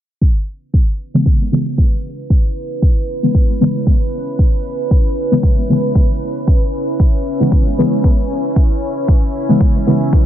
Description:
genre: dub techno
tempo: 115 BPM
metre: 4/4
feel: swing 54% on 16ths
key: C# minor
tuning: A4 = 440 Hz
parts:
  - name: deep dark ambient pad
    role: sustained chords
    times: 2.0-10.3 s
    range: C#4 to E5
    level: -21 LUFS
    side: right 1 dB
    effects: chorus, built-in reverb, sidechain pumping
  - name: electronic kick drum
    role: drums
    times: 0.2-10.2 s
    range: none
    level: -12 LUFS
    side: equal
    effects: none
  - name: deep mellow chord stab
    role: stabs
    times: 1.1-10.3 s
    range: C#3 to B3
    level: -16 LUFS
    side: left 1 dB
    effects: chorus, phaser, sidechain pumping, dub echo
room: light reverb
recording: low-pass filter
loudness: -13 LUFS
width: side -11 dB against mid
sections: 0.2-10.3 A section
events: filter sweep 0.2-10.3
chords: 0.2 C#m7

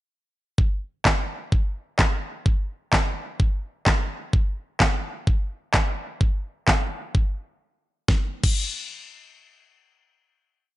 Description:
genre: dance-pop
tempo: 128 BPM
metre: 4/4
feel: straight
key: none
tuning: none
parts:
  - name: pop drum kit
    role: drums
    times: 0.6-8.6 s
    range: crash cymbal, handclaps, kick drum, snare drum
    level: -21 LUFS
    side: equal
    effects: none
room: digital ambience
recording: nothing above 10.6 kHz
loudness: -22 LUFS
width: side -16 dB against mid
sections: 0.6-8.1 verse; 8.1-10.8 final hit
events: break 7.6-8.1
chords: none

